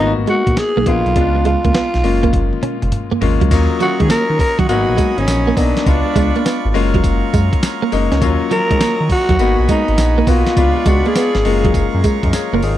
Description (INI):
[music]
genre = R&B, new jack swing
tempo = 102 BPM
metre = 4/4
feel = swing 67% on 16ths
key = unclear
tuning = A4 = 440 Hz
[part]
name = growling tenor saxophone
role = melody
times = 0.0-11.9 s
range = Db4 to Bb4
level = -18 LUFS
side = equal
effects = tape echo
[part]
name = bright concert grand piano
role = accompaniment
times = 0.0-12.8 s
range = F3 to Eb5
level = -20 LUFS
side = left 9 dB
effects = none
[part]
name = smooth synth bass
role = bass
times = 0.0-12.8 s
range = Gb1 to Eb3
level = -18 LUFS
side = equal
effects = none
[part]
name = direct-recorded clean electric guitar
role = riff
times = 0.3-12.7 s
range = Gb3 to Db4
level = -19 LUFS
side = right 5 dB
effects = ensemble chorus
[part]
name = dusty soul sampler-style drum kit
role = drums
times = 0.3-12.8 s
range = crash cymbal, hi-hat, kick drum, snare drum, tambourine, toms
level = -18 LUFS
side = equal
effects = none
[part]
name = accordion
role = sustained chords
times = 3.5-12.8 s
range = Gb3 to Db6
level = -25 LUFS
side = right 5 dB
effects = none
[sound]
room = little or no reverb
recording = dry, close 1970s-style studio recording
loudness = -12 LUFS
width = side -12 dB against mid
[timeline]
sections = 0.0-3.5 A section; 3.5-12.8 B section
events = drum fill 2.3-3.5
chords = 0.0 Abm7; 1.2 Db7b9; 2.0 Gbmaj7; 3.5 Ebm7; 4.7 Abm7; 5.9 Db7b9; 6.7 Gbmaj7; 8.2 Ebm7; 9.4 Abm7; 10.6 Db7b9; 11.5 Gbmaj7